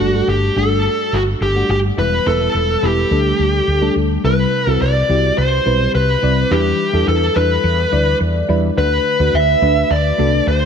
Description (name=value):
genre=1980s-style pop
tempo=106 BPM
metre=4/4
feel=straight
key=unclear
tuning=A4 = 440 Hz
part: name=bluesy overdriven lead guitar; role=melody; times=0.0-10.7 s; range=F#4 to E5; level=-17 LUFS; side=equal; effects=distortion
part: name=mellow FM electric piano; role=accompaniment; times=0.0-10.7 s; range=G2 to D5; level=-19 LUFS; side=left 1 dB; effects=chorus, phaser
part: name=woody fretless electric bass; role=bass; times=0.0-10.7 s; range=E1 to E2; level=-18 LUFS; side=equal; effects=none
room=light reverb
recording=none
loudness=-13 LUFS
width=side -7 dB against mid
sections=0.0-4.2 A section; 4.2-10.7 B section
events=none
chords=0.0 Gsus2; 2.0 Em; 3.1 Dsus4; 4.2 Cmaj7; 6.5 Em7; 8.8 Bm7/D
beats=0.28 0.85 1.41 | 1.98 2.55 3.11 3.68 | 4.24 4.81 5.38 5.94 | 6.51 7.08 7.64 8.21 | 8.77 9.34 9.90 10.47